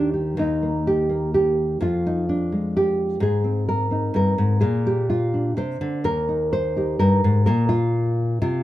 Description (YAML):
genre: folk, solo fingerstyle acoustic guitar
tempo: 127 BPM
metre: 3/4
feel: straight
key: Eb major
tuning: A4 = 439 Hz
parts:
  - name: nylon-string guitar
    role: solo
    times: 0.0-8.6 s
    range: Eb2 to C5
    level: -19 LUFS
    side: equal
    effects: none
room: light reverb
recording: dark, warm production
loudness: -19 LUFS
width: side -14 dB against mid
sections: 0.4-8.6 A section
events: none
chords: 0.4 Eb; 1.8 Fmadd9; 3.2 Abadd9; 4.6 Bb; 6.1 Eb; 7.5 Bbsus2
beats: | 0.38 0.85 1.33 | 1.80 2.27 2.74 | 3.21 3.68 4.15 | 4.62 5.10 5.57 | 6.05 6.53 7.01 | 7.48 7.95 8.42